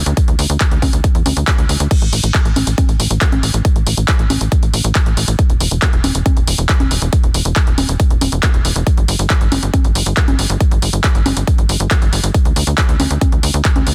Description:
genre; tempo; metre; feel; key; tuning
uplifting trance; 138 BPM; 4/4; straight; unclear; A4 = 439 Hz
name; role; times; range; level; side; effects
tight sequencer bass; bass; 0.0-13.9 s; E1 to E2; -20 LUFS; equal; sidechain pumping
punchy analog drum machine; drums; 0.1-13.9 s; congas, crash cymbal, handclaps, hi-hat; -21 LUFS; equal; none
electronic kick drum; drums; 0.2-13.7 s; none; -16 LUFS; equal; overdrive
room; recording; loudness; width
little or no reverb; dense, heavily limited modern master; -15 LUFS; mono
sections
0.0-13.9 A section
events
none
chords
none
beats
| 0.17 0.60 1.04 1.48 | 1.91 2.34 2.78 3.21 | 3.65 4.08 4.52 4.95 | 5.39 5.82 6.26 6.69 | 7.13 7.56 8.00 8.43 | 8.87 9.30 9.74 10.17 | 10.61 11.04 11.47 11.91 | 12.34 12.78 13.21 13.65

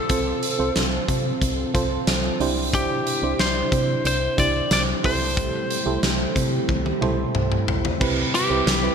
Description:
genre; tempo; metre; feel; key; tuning
1980s-style pop; 91 BPM; 4/4; straight; C major; A4 = 439 Hz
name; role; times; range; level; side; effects
lightly driven lead guitar; melody; 0.0-8.9 s; G4 to D5; -25 LUFS; left 2 dB; ping-pong delay
FM electric piano with tremolo; accompaniment; 0.0-8.9 s; C3 to C5; -26 LUFS; right 5 dB; none
soft string machine; sustained chords; 0.0-8.9 s; C3 to A4; -30 LUFS; equal; ensemble chorus
solid FM bass; bass; 0.1-8.9 s; B1 to C3; -27 LUFS; left 1 dB; none
big rock drum kit; drums; 0.1-8.8 s; crash cymbal, hi-hat, kick drum, snare drum, toms; -24 LUFS; equal; gated reverb
overdriven electric guitar; accompaniment; 8.0-8.9 s; C3 to C4; -32 LUFS; equal; none
room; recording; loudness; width
moderate plate reverb, RT60 2.5 s; bright 1980s-style digital production; -19 LUFS; side -6 dB against mid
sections
0.0-8.0 A section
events
drum fill 6.7-8.0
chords
0.0 F; 2.4 Cadd9; 5.0 Am7/C; 8.0 Cmaj7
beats
| 0.10 0.76 1.42 2.08 | 2.74 3.40 4.05 4.71 | 5.37 6.03 6.69 7.35 | 8.01 8.67

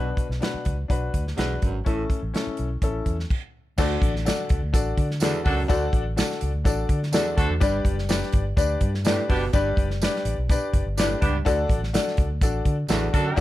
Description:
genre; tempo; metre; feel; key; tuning
uptempo 1960s-style soul; 125 BPM; 4/4; straight; D major; A4 = 440 Hz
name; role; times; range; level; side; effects
clear grand piano; accompaniment; 0.0-13.4 s; A2 to D5; -27 LUFS; left 4 dB; none
breathy baritone saxophone; riff; 0.0-13.4 s; D2 to B2; -31 LUFS; right 6 dB; none
vintage muted fingered electric bass; bass; 0.0-13.4 s; F#1 to D3; -27 LUFS; equal; none
natural country drum kit; drums; 0.2-13.4 s; crash cymbal, hi-hat, kick drum, snare drum; -24 LUFS; equal; none
tambourine; percussion; 3.8-13.4 s; none; -38 LUFS; right 8 dB; none
clear horn section; second line; 5.2-13.4 s; A3 to A4; -30 LUFS; right 1 dB; none
room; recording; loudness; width
light reverb; dark, warm production; -21 LUFS; side -15 dB against mid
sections
0.0-3.8 A section; 3.8-13.4 B section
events
stop 3.3-3.8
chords
0.0 Bm; 1.9 A; 3.8 D; 7.6 G; 11.5 D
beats
0.41 0.89 1.38 | 1.86 2.34 2.82 3.30 | 3.78 4.26 4.74 5.22 | 5.70 6.18 6.66 7.14 | 7.62 8.10 8.58 9.06 | 9.54 10.02 10.49 10.97 | 11.45 11.93 12.41 12.89 | 13.38

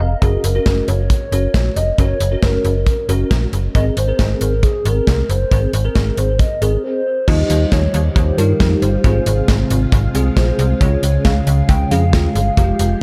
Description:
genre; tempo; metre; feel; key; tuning
synth-pop; 136 BPM; 4/4; straight; Ab mixolydian; A4 = 440 Hz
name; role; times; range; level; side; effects
bell-like tine electric piano; accompaniment; 0.0-13.0 s; Ab3 to F5; -26 LUFS; equal; ensemble chorus, dub echo
slap-like FM bass; bass; 0.0-12.9 s; F1 to G2; -19 LUFS; equal; none
hollow clarinet-like synth lead; melody; 0.2-13.0 s; Ab4 to G5; -24 LUFS; equal; chorus, tremolo, dub echo
modern studio drum kit; drums; 0.2-12.9 s; crash cymbal, hi-hat, kick drum, snare drum; -19 LUFS; equal; dub echo
ensemble organ-string; sustained chords; 7.3-13.0 s; C3 to G4; -25 LUFS; equal; ensemble chorus
room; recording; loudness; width
light reverb; echo-heavy mix; -16 LUFS; mono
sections
0.0-7.3 A section; 7.3-13.0 B section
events
tine electric piano fill 0.0; break 6.8-7.3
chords
0.2 Gb; 3.7 Abadd9; 7.3 Ebadd9; 9.0 Ab6; 10.8 Db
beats
| 0.22 0.66 1.10 1.54 | 1.98 2.43 2.87 3.31 | 3.75 4.19 4.63 5.07 | 5.51 5.96 6.40 6.84 | 7.28 7.72 8.16 8.60 | 9.04 9.48 9.93 10.37 | 10.81 11.25 11.69 12.13 | 12.57 13.01

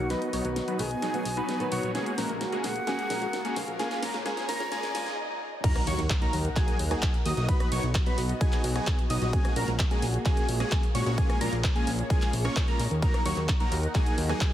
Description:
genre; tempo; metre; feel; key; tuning
EDM, festival progressive house; 130 BPM; 4/4; straight; Eb minor; A4 = 441 Hz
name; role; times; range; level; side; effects
breathy concert flute; melody; 0.0-5.1 s; Db5 to Bb5; -36 LUFS; equal; ping-pong delay
fingerpicked old ladder-braced acoustic guitar; accompaniment; 0.0-5.0 s; Db3 to Ab4; -36 LUFS; left 2 dB; sidechain pumping, ping-pong delay
lush unison pad; sustained chords; 0.0-14.5 s; Bb3 to Gb5; -37 LUFS; equal; chorus, phaser, sidechain pumping
wide unison lead; arpeggios; 0.0-14.5 s; Ab5 to Eb6; -35 LUFS; right 1 dB; sidechain pumping, ping-pong delay
supersaw chords; riff; 0.0-14.5 s; F#3 to Eb5; -33 LUFS; equal; cassette tape, sidechain pumping, low-pass filter, ping-pong delay
fat analog bass; bass; 0.0-14.3 s; Bb1 to Eb2; -30 LUFS; equal; sidechain pumping
riser, swell and impact; sound effects; 2.2-7.5 s; none; -39 LUFS; equal; none
big-room dance drum kit; drums; 0.1-14.5 s; crash cymbal, handclaps, hi-hat, rim click, snare drum; -35 LUFS; equal; high-pass filter on hats, high-pass filter on toms, high-pass filter on snare, high-pass filter on cymbals
electronic kick drum; drums; 5.6-14.5 s; none; -26 LUFS; equal; none
room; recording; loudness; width
light reverb; heavily compressed radio sound, high-pass filter; -25 LUFS; side -12 dB against mid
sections
0.0-5.6 A section; 5.6-14.5 B section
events
build-up 0.0-5.6; drum fill 0.0-5.2; filter sweep on supersaw synth 0.0-5.6; filter sweep on analog synth lead 0.0-5.6; filter sweep 0.0-5.6; swell 4.7-5.6; stop 5.2-5.6; drop 5.6-14.5; impact 5.6-7.5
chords
0.1 B; 1.9 Gbadd9/Bb; 3.8 Bbm7; 5.6 Ebm; 7.5 B; 9.3 Gbadd9/Bb; 11.2 Bbm7; 13.0 Ebm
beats
| 0.10 0.56 1.02 1.49 | 1.95 2.41 2.87 3.33 | 3.79 4.25 4.72 5.18 | 5.64 6.10 6.56 7.02 | 7.49 7.95 8.41 8.87 | 9.33 9.79 10.26 10.72 | 11.18 11.64 12.10 12.56 | 13.02 13.49 13.95 14.41

